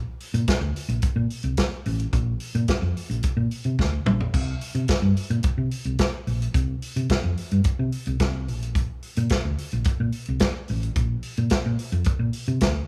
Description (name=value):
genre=disco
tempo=109 BPM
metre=4/4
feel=straight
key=unclear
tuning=A4 = 440 Hz
part: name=hollow-body short-scale fingered electric bass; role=bass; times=0.0-12.8 s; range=A1 to C3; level=-26 LUFS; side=equal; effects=none
part: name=vintage drum kit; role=drums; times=0.2-12.7 s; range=hi-hat, kick drum, snare drum, splash cymbal, toms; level=-27 LUFS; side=equal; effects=none
room=little or no reverb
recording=small room ambience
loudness=-25 LUFS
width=mono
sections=0.0-12.9 A section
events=drum fill 3.8-4.3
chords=none